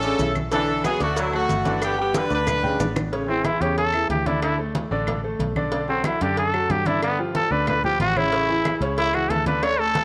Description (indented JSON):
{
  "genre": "latin, salsa",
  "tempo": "184 BPM",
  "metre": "4/4",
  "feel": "straight",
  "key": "A major",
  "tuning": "A4 = 440 Hz",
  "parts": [
    { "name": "clear horn section", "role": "melody", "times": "0.0-2.9 s", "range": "A3 to B4", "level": "-26 LUFS", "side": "equal", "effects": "none" },
    { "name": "bright trombone section", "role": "second line", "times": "0.0-2.9 s", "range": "C#3 to F#3", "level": "-33 LUFS", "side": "equal", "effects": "none" },
    { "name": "clear baby grand piano", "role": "accompaniment", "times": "0.0-10.0 s", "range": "C#3 to E6", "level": "-29 LUFS", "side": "equal", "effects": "none" },
    { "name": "fingered electric bass", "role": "bass", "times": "0.0-10.0 s", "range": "G1 to G2", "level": "-31 LUFS", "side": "equal", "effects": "none" },
    { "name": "congas", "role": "percussion", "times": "0.0-10.0 s", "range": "none", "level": "-32 LUFS", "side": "equal", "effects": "none" },
    { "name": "maracas", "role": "percussion", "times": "0.0-3.1 s", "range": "none", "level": "-42 LUFS", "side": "equal", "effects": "none" },
    { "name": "cowbell and bongos", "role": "percussion", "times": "0.2-10.0 s", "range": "none", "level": "-36 LUFS", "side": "equal", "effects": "none" },
    { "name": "claves", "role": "percussion", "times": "0.4-9.8 s", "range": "none", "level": "-39 LUFS", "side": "equal", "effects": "none" },
    { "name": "growling trumpet", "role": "melody", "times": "3.3-10.0 s", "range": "B3 to C#5", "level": "-25 LUFS", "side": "equal", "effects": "none" }
  ],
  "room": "light reverb",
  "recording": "none",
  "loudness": "-22 LUFS",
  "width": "mono",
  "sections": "0.0-3.1 A section; 3.1-10.0 B section",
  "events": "drum fill 2.1-3.1; trumpet solo 3.1-10.0",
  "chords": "0.0 Dsus2; 0.5 Bm7; 1.8 G; 3.1 Amaj7; 4.4 D5; 5.7 Bm7; 7.0 G5; 8.3 Amaj7"
}